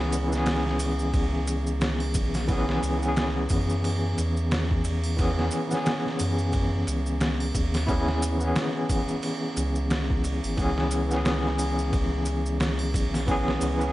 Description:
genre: trip hop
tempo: 89 BPM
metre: 4/4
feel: swing 58% on 16ths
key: C# minor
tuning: A4 = 436 Hz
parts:
  - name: overdriven tine electric piano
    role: accompaniment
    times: 0.0-13.9 s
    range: E3 to G#4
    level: -27 LUFS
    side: left 1 dB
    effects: tremolo, vintage 12-bit sampler grit, tape echo
  - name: soft dub sub bass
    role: bass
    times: 0.0-13.9 s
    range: G#1 to F#2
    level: -28 LUFS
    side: equal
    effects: none
  - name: trip hop sampler-style drum kit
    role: drums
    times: 0.1-13.8 s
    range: kick drum, ride cymbal, snare drum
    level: -29 LUFS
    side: equal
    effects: overdrive
  - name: maracas and triangle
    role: percussion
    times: 0.1-13.9 s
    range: none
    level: -39 LUFS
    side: right 2 dB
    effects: none
room: digital ambience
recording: nothing above 10.7 kHz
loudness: -23 LUFS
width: side -16 dB against mid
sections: 0.0-13.9 A section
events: none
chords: 0.0 C#m7

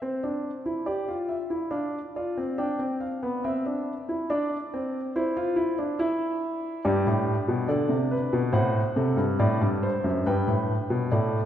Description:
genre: classical, baroque-style 3-part fugue for grand piano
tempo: 70 BPM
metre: 4/4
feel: straight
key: C major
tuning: A4 = 440 Hz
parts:
  - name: warm concert grand piano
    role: solo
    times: 0.0-11.5 s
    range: F#2 to G5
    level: -24 LUFS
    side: equal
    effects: none
room: wet concert hall reverb, RT60 2.3 s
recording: heard from further back in the room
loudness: -24 LUFS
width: side -10 dB against mid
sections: 0.0-11.5 A section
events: none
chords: 0.0 C; 1.7 G7(no3); 3.4 C; 6.8 G; 8.5 D7; 10.2 G

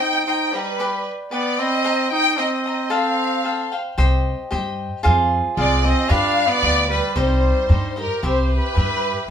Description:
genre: mexican folk, mariachi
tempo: 113 BPM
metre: 2/4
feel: straight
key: C minor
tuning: A4 = 440 Hz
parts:
  - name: rich studio violin section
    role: melody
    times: 0.0-9.3 s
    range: Bb4 to G5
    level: -21 LUFS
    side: left 1 dB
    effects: none
  - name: warm trumpet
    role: second line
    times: 0.0-9.3 s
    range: G3 to G4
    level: -25 LUFS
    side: right 3 dB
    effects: none
  - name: cavaquinho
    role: accompaniment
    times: 0.0-9.3 s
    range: Eb4 to B5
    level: -24 LUFS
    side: equal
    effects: none
  - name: upright bass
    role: bass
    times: 4.0-9.1 s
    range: C2 to G2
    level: -19 LUFS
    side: equal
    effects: none
room: wet studio reverb, RT60 0.6 s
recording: band playing live in one room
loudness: -17 LUFS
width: side -8 dB against mid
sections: 0.0-8.2 A section; 8.2-9.3 B section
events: none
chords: 0.0 Cm7; 0.8 G; 1.8 Cm7; 2.9 Fadd9; 4.0 Cm; 5.0 Fm; 6.1 G7; 7.2 Cm; 8.2 C

